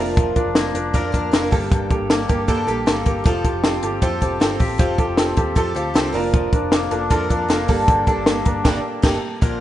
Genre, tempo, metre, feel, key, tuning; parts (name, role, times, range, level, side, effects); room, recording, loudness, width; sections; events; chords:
jangly indie pop; 156 BPM; 4/4; straight; A4 = 441 Hz
picked twelve-string acoustic guitar; accompaniment; 0.0-9.6 s; G2 to Bb4; -26 LUFS; right 2 dB
warm upright piano; accompaniment; 0.0-9.4 s; Bb3 to Bb5; -24 LUFS; right 2 dB
electric guitar through a small old amp; arpeggios; 0.0-9.6 s; G2 to Bb4; -26 LUFS; left 5 dB
vintage muted picked electric bass; bass; 0.0-9.6 s; F1 to G2; -29 LUFS; equal
compact cocktail drum kit; drums; 0.2-9.5 s; crash cymbal, hi-hat, kick drum, snare drum; -19 LUFS; equal
light reverb, small room reverb; rough home demo mix, nothing above 10.4 kHz; -17 LUFS; side -13 dB against mid
0.0-9.4 A section
upright piano fill 5.6-6.3; band accent 8.7-9.4
0.0 Bb/F; 1.5 Gmadd9; 3.3 Fadd9; 6.1 Bb/F; 7.7 Gmadd9